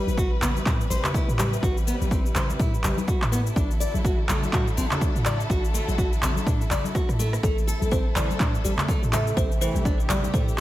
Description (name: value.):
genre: afro house.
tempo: 124 BPM.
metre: 4/4.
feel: swing 58% on 16ths.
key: unclear.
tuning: A4 = 436 Hz.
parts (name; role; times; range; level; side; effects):
warm studio string section; sustained chords; 0.0-10.6 s; C3 to B4; -33 LUFS; left 1 dB; sidechain pumping.
nylon-string guitar; arpeggios; 0.0-10.6 s; E3 to D5; -31 LUFS; equal; sidechain pumping, tape echo.
warm 808-style bass; bass; 0.1-10.6 s; A1 to A2; -27 LUFS; equal; sidechain pumping.
electronic cabasa, handclaps and rim click; drums; 0.1-10.6 s; none; -30 LUFS; equal; overdrive, studio reverb.
congas; percussion; 0.1-10.3 s; none; -32 LUFS; left 2 dB; none.
electronic kick drum; drums; 0.2-10.4 s; none; -25 LUFS; equal; overdrive, studio reverb.
kalimba; melody; 7.4-10.6 s; A4 to E5; -31 LUFS; right 1 dB; tape echo.
room: studio ambience.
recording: none.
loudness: -21 LUFS.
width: side -15 dB against mid.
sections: 0.0-10.6 A section.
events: drum fill 7.0-7.4.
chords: 0.0 Cmaj7/A; 3.6 Dadd9/A; 7.4 Am.